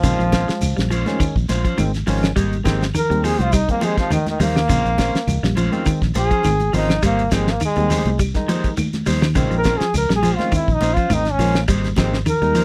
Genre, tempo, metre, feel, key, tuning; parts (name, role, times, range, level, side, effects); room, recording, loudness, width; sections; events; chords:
afrobeat; 103 BPM; 4/4; swing 54% on 16ths; Bb dorian; A4 = 439 Hz
bright trombone; melody; 0.0-12.6 s; Eb3 to Bb4; -23 LUFS; equal
barky tine electric piano; accompaniment; 0.0-12.6 s; Eb3 to Eb4; -30 LUFS; equal; overdrive
clean electric guitar; arpeggios; 0.0-12.6 s; Db3 to Ab3; -26 LUFS; equal; tremolo
electric guitar at the edge of break-up; stabs; 0.0-12.6 s; Ab3 to C5; -28 LUFS; equal
fingered electric bass; bass; 0.0-12.6 s; Ab1 to Eb2; -24 LUFS; equal
cloth-damped thuddy drum kit; drums; 0.0-12.6 s; hi-hat, kick drum, snare drum; -24 LUFS; equal
shekere; percussion; 0.0-12.6 s; -33 LUFS; equal
claves; percussion; 0.3-12.4 s; -39 LUFS; equal
congas; percussion; 0.3-12.6 s; -29 LUFS; equal
little or no reverb; dry, close 1970s-style studio recording; -19 LUFS; mono
0.0-12.6 A section
trombone solo 0.0-12.6
0.0 Bbm9; 2.4 Abmaj9; 4.7 Bbm9; 7.0 Abmaj9; 9.4 Bbm9; 11.7 Abmaj9